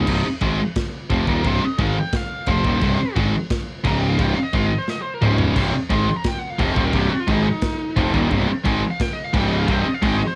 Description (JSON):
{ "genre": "heavy metal", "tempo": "175 BPM", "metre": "4/4", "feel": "straight", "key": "C phrygian", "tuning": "A4 = 444 Hz", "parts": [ { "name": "high-gain lead guitar", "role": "melody", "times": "0.0-10.4 s", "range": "Eb4 to C6", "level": "-30 LUFS", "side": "equal", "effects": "distortion, cassette tape" }, { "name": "high-gain distorted guitar", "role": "riff", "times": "0.0-10.2 s", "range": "C2 to Ab3", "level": "-24 LUFS", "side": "equal", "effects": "distortion, cassette tape" }, { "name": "fuzz picked electric bass", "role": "bass", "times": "0.0-10.2 s", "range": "C1 to Ab1", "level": "-25 LUFS", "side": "equal", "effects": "overdrive" }, { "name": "modern studio drum kit", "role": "drums", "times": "0.1-10.1 s", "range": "crash cymbal, kick drum, snare drum, splash cymbal, toms", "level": "-27 LUFS", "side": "equal", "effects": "none" }, { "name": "scooped high-gain guitar", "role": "riff", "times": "5.6-10.2 s", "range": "C2 to Ab3", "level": "-28 LUFS", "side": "equal", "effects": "distortion, cassette tape" } ], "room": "little or no reverb", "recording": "home recording on cassette", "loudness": "-20 LUFS", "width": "mono", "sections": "0.0-10.4 A section", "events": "lead electric guitar solo 0.0-10.4; drum fill 4.9-5.6", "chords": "0.1 Cm; 3.9 Db5; 4.2 Cm; 5.2 Db5; 5.6 Cm; 9.3 Db5; 9.7 Cm" }